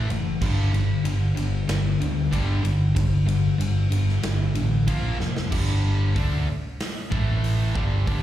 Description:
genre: hard rock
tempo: 94 BPM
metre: 4/4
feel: straight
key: G dorian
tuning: A4 = 440 Hz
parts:
  - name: sludgy distorted guitar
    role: riff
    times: 0.0-8.2 s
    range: G2 to D4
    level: -26 LUFS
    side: left 2 dB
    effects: overdrive
  - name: picked electric bass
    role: bass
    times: 0.0-8.2 s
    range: F1 to D2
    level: -23 LUFS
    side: equal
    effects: none
  - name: big rock drum kit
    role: drums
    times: 0.1-8.2 s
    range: crash cymbal, hi-hat, kick drum, ride cymbal, snare drum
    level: -29 LUFS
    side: equal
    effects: none
room: small room ambience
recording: live gig heard through the venue's PA, club reverb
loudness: -21 LUFS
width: side -12 dB against mid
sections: 0.0-5.5 A section; 5.5-8.2 B section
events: drum fill 5.2-5.5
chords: 0.4 G5; 4.9 Bb5; 5.5 G5; 7.1 A5

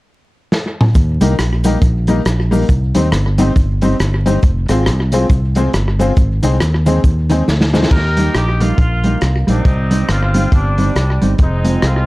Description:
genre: ska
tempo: 138 BPM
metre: 4/4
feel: swing 60% on 8ths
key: Eb major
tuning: A4 = 440 Hz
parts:
  - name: crunchy breakbeat drum kit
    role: drums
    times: 0.5-11.9 s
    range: crash cymbal, hi-hat, kick drum, rim click, snare drum, toms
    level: -16 LUFS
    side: equal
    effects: slapback echo
  - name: cabasa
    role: percussion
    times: 0.9-7.8 s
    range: none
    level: -40 LUFS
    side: right 3 dB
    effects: none
  - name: fingered electric bass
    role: bass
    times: 1.0-12.1 s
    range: F1 to Eb2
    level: -15 LUFS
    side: equal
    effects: none
  - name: mellow electric guitar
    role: accompaniment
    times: 1.2-11.8 s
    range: Eb3 to F4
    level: -18 LUFS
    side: right 1 dB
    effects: none
  - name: tack piano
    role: stabs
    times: 1.2-7.9 s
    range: Bb3 to C5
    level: -20 LUFS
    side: left 4 dB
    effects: none
  - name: clear horn section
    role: melody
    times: 7.9-12.1 s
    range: G3 to Bb4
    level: -20 LUFS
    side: equal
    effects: slapback echo
room: light reverb, small room ambience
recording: dark, warm production, vinyl crackle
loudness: -12 LUFS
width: side -19 dB against mid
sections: 1.0-7.9 A section; 7.9-12.1 B section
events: drum fill 0.5-1.0, 7.5-7.9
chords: 0.0 N.C.; 1.0 Eb; 2.7 Cm; 4.4 Fm; 6.2 Ab; 7.9 Eb; 9.7 Cm; 11.4 Fm

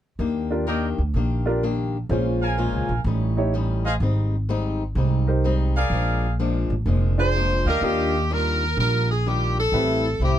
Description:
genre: jazz, big band swing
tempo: 126 BPM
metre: 4/4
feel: swing 66% on 8ths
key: Eb major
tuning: A4 = 440 Hz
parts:
  - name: picked swing-style acoustic guitar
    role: accompaniment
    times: 0.2-10.4 s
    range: Ab2 to G4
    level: -28 LUFS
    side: left 4 dB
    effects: none
  - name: upright bass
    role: bass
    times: 0.2-10.4 s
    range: F1 to Eb2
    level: -22 LUFS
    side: right 1 dB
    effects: none
  - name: clear upright piano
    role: accompaniment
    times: 0.5-10.0 s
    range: C4 to C#5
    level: -26 LUFS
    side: right 1 dB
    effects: none
  - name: clear trumpet section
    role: stabs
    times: 0.7-8.3 s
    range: G4 to Ab5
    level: -26 LUFS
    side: equal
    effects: none
  - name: edgy saxophone section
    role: melody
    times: 7.2-10.4 s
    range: G4 to C5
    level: -23 LUFS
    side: equal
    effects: none
room: little or no reverb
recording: close, detailed microphones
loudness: -20 LUFS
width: side -11 dB against mid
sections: 0.2-7.8 A section; 7.8-10.4 B section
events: none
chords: 0.2 Ebmaj7; 2.1 Bbm7; 3.1 A7#11; 4.0 Abmaj7; 5.9 Bb7; 7.8 Ebmaj9; 9.7 Am7

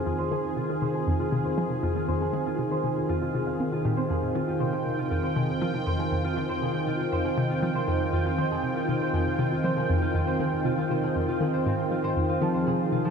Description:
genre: ambient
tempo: 119 BPM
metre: 4/4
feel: straight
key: F minor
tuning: A4 = 440 Hz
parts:
  - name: sweeping resonant pad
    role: sustained chords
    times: 0.0-13.1 s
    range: Eb3 to G5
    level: -27 LUFS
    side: equal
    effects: chorus, shimmer reverb
  - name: concert harp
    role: arpeggios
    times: 0.0-13.1 s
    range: F3 to F5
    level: -31 LUFS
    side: right 1 dB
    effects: auto-pan, low-pass filter, analog delay, shimmer reverb
  - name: hollow square pluck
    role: riff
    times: 0.0-13.1 s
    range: F2 to C4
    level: -29 LUFS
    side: left 1 dB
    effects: chorus, analog delay
room: wet huge ambient reverb, RT60 8.4 s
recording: dreamy mix soaked in reverb, cassette tape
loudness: -24 LUFS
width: side -6 dB against mid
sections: 0.0-13.1 A section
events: filter sweep on harp 0.0-13.1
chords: 0.0 Fm7

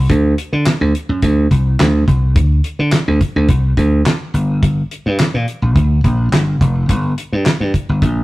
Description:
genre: early-eighties boogie funk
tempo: 106 BPM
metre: 4/4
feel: straight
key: unclear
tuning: A4 = 440 Hz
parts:
  - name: slap bass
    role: bass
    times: 0.0-8.2 s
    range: F1 to D3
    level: -14 LUFS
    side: equal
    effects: none
  - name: damped 70s drum kit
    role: drums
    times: 0.1-8.2 s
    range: handclaps, hi-hat, kick drum, snare drum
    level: -16 LUFS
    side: equal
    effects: none
room: light reverb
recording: rough rehearsal-room recording, tube saturation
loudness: -12 LUFS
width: side -18 dB against mid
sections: 0.1-8.2 A section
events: none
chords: none

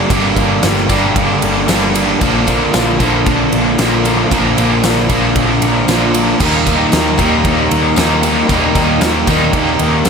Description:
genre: rock, shoegaze and dream pop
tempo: 114 BPM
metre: 4/4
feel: straight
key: unclear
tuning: A4 = 439 Hz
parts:
  - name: cranked stack guitar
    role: riff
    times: 0.0-10.1 s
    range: G2 to Eb4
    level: -16 LUFS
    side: left 1 dB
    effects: overdrive, harmonic tremolo
  - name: crunchy overdriven guitar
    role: riff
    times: 0.0-10.1 s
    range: G2 to Bb4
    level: -18 LUFS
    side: right 10 dB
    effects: reverse reverb
  - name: thick fuzz guitar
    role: riff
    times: 0.0-10.1 s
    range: G2 to Eb4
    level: -18 LUFS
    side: left 8 dB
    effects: distortion, wide subtle chorus
  - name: vintage muted picked electric bass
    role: bass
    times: 0.0-10.1 s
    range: G1 to Eb2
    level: -20 LUFS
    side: equal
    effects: none
  - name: huge arena drum kit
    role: drums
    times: 0.1-10.1 s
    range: crash cymbal, kick drum, ride cymbal, snare drum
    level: -17 LUFS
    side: equal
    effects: none
  - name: tambourine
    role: percussion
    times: 0.1-10.1 s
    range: none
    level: -29 LUFS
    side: left 12 dB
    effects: none
room: moderate lush hall reverb, RT60 1.8 s, studio reverb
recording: none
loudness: -10 LUFS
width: side -6 dB against mid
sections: 0.0-10.1 A section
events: none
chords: 0.0 Gm; 2.2 Bb; 6.4 Eb

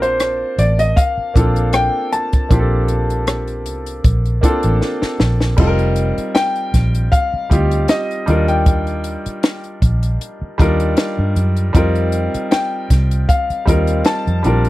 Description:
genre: lush 1970s-style soul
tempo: 78 BPM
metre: 4/4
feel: swing 54% on 16ths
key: unclear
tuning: A4 = 441 Hz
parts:
  - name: warm concert grand piano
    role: melody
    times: 0.0-14.7 s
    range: C5 to A5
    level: -20 LUFS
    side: left 2 dB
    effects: none
  - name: clear grand piano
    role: accompaniment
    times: 0.0-14.7 s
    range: G3 to A5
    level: -21 LUFS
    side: equal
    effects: none
  - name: vintage muted fingered electric bass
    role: bass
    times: 0.0-14.7 s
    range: F1 to G2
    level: -17 LUFS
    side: equal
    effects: none
  - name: compact cocktail drum kit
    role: drums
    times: 0.0-14.7 s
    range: crash cymbal, hi-hat, kick drum, rim click, snare drum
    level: -16 LUFS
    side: equal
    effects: none
room: little or no reverb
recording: dry, close 1970s-style studio recording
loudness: -14 LUFS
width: side -17 dB against mid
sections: 0.0-5.6 A section; 5.6-14.7 B section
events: drum fill 4.8-5.6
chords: 0.0 Bbmaj9; 5.6 F7sus4; 8.3 Ebmaj7; 11.7 F7sus4

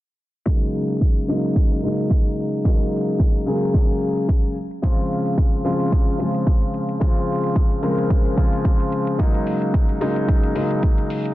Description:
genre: nu-disco, nu disco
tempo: 110 BPM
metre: 4/4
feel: swing 55% on 16ths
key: unclear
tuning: A4 = 440 Hz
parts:
  - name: warm concert grand piano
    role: accompaniment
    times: 0.5-11.3 s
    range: Db3 to Bb4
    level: -21 LUFS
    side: left 1 dB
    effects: sidechain pumping, low-pass filter, slapback echo
  - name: electronic hi-hat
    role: drums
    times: 0.5-11.3 s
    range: none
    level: -46 LUFS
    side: left 2 dB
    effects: low-pass filter on hats, studio reverb
  - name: electronic kick drum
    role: drums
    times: 0.5-11.0 s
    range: none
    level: -18 LUFS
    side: equal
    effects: studio reverb
room: light reverb, studio reverb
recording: dense, heavily limited modern master, low-pass filter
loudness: -18 LUFS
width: side -16 dB against mid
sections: 0.5-11.3 A section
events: filter sweep on drum 0.5-11.3; filter sweep on grand piano 0.5-11.3; filter sweep 0.5-11.3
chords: 0.5 Gb69; 4.6 Dbmaj7; 9.2 Gb69

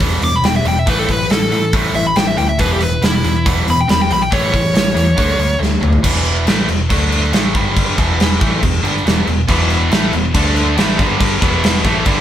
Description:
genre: hard rock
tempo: 139 BPM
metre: 4/4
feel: straight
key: unclear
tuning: A4 = 440 Hz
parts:
  - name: tight distorted guitar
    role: riff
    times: 0.0-12.2 s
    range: E2 to D4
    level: -19 LUFS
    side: right 1 dB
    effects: distortion
  - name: fingered electric bass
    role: bass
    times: 0.0-12.2 s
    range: E1 to A2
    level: -19 LUFS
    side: equal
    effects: none
  - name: gated 80s drum kit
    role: drums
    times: 0.0-12.2 s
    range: crash cymbal, hi-hat, kick drum, snare drum, toms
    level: -16 LUFS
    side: equal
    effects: none
  - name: bluesy overdriven lead guitar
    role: melody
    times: 0.2-5.6 s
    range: E4 to D6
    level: -18 LUFS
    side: left 1 dB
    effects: distortion, tape echo
  - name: high-gain distorted guitar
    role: riff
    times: 9.5-12.2 s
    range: E2 to D4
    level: -19 LUFS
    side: equal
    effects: distortion
room: light reverb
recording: band playing live in one room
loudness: -12 LUFS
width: side -11 dB against mid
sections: 0.0-6.0 A section; 6.0-12.2 B section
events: lead electric guitar solo 0.0-6.0; drum fill 5.6-6.0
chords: 0.0 E5; 0.9 A5; 2.6 E5; 4.3 A; 5.2 D5; 6.0 E5; 6.9 D5; 7.3 A5; 7.5 G5; 8.0 E5; 10.3 D5; 10.8 A5; 11.0 G5; 11.4 E5

